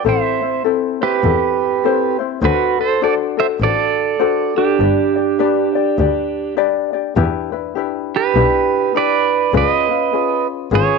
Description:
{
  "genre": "Hawaiian",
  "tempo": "101 BPM",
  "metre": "4/4",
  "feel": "swing 61% on 8ths",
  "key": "G major",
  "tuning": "A4 = 440 Hz",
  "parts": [
    { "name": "pedal steel guitar", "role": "melody", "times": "0.0-11.0 s", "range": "D4 to E5", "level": "-16 LUFS", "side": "right 10 dB", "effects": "none" },
    { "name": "ukulele", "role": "accompaniment", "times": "0.0-11.0 s", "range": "C4 to D5", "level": "-19 LUFS", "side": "left 14 dB", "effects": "none" },
    { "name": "warm double bass", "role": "bass", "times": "0.1-10.8 s", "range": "G1 to E2", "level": "-19 LUFS", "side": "left 2 dB", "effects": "none" }
  ],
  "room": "light reverb, studio reverb",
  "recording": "1960s-style stereo with parts hard left and right, nothing above 7.9 kHz",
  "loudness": "-14 LUFS",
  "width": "side -4 dB against mid",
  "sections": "0.0-7.2 A section; 7.2-11.0 B section",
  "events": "none",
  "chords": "0.1 Am; 2.4 D7; 4.8 G; 7.2 Em7; 9.5 C#7"
}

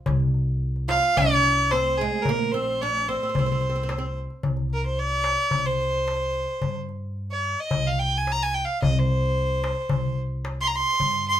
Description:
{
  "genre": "Arabic maqam ensemble",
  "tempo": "110 BPM",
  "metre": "4/4",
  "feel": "straight",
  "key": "C maqam bayati",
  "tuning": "A4 = 440 Hz",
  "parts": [
    { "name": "upright bass", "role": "bass", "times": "0.1-11.4 s", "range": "Bb1 to G2", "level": "-27 LUFS", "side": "equal", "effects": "none" },
    { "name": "darbuka", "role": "percussion", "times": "0.1-11.4 s", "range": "none", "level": "-28 LUFS", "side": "left 3 dB", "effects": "none" },
    { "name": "clear fiddle", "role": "melody", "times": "0.9-11.4 s", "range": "Ab4 to C6", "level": "-23 LUFS", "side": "equal", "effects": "none" },
    { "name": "oud", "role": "second line", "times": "0.9-4.1 s", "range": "Ab3 to F4", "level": "-29 LUFS", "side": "right 5 dB", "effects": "none" }
  ],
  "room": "light reverb",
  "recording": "minimal, uncompressed stereo recording",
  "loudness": "-22 LUFS",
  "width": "side -11 dB against mid",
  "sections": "0.0-4.4 A section; 4.4-11.4 B section",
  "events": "none",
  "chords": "none"
}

